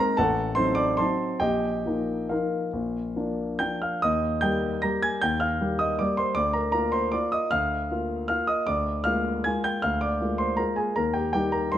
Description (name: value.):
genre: classical, piano waltz.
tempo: 132-168 BPM.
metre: 3/4.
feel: rubato.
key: Eb major.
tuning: A4 = 441 Hz.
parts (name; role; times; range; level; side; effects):
warm grand piano; solo; 0.0-11.8 s; A1 to Bb6; -23 LUFS; equal; none.
room: moderate recital hall reverb, RT60 1.7 s.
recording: none.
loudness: -23 LUFS.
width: side -11 dB against mid.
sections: 0.0-4.0 A section; 4.0-11.8 B section.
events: none.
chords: 0.2 Adim7; 1.4 Bbsus4; 2.7 Bb; 4.0 Eb; 6.4 Bb/D; 8.7 Bb7/D; 11.0 Eb.